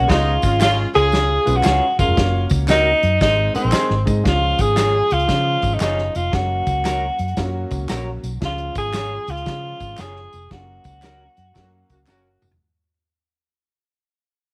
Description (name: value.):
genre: uptempo 1960s-style soul.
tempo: 115 BPM.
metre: 4/4.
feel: swing 65% on 8ths.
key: Db major.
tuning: A4 = 440 Hz.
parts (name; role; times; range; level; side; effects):
warm tenor saxophone; melody; 0.0-12.4 s; C4 to Ab4; -22 LUFS; equal; slapback echo.
clear concert grand piano; accompaniment; 0.0-12.4 s; F3 to Eb5; -31 LUFS; equal; none.
vintage muted fingered electric bass; bass; 0.0-12.6 s; F1 to Db3; -24 LUFS; equal; none.
warm horn section; second line; 0.1-1.4, 11.6-12.5 s; Ab3 to Ab4; -26 LUFS; equal; none.
natural country drum kit; drums; 0.1-12.6 s; hi-hat, kick drum, snare drum, toms; -26 LUFS; equal; none.
tambourine and handclaps; percussion; 0.1-12.5 s; none; -36 LUFS; equal; none.
electric guitar through a small old amp; stabs; 0.6-12.3 s; Db4 to Db5; -30 LUFS; equal; none.
room: small room ambience.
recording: vinyl crackle.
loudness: -19 LUFS.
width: mono.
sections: 0.0-4.3 A section; 4.3-12.6 B section.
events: fade-out 4.3-12.6; band accent 10.5-12.6; drum fill 12.1-12.6.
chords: 0.1 Db; 2.2 Gb; 3.2 Ab; 4.3 Db; 6.3 Gb; 8.4 Db; 10.5 Gb.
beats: | 0.09 0.61 1.13 1.65 | 2.17 2.69 3.21 3.73 | 4.25 4.77 5.29 5.81 | 6.33 6.85 7.37 7.89 | 8.41 8.94 9.46 9.98 | 10.51 11.03 11.55 12.08.